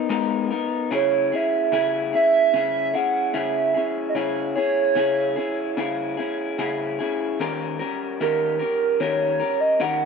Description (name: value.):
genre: indie pop.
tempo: 74 BPM.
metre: 4/4.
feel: straight.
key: C# dorian.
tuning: A4 = 440 Hz.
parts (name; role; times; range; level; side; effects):
electric guitar through a small old amp; accompaniment; 0.0-10.1 s; C#3 to A#4; -25 LUFS; left 4 dB; lush chorus, vibrato effect.
warbly nostalgic lead; melody; 0.9-10.1 s; A#4 to F#5; -20 LUFS; right 4 dB; lush chorus, tape echo.
room: moderate studio reverb, RT60 0.6 s.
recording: none.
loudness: -20 LUFS.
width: side -5 dB against mid.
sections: 0.0-10.1 A section.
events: none.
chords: 0.0 G#madd9; 0.9 C#m; 7.4 D#7.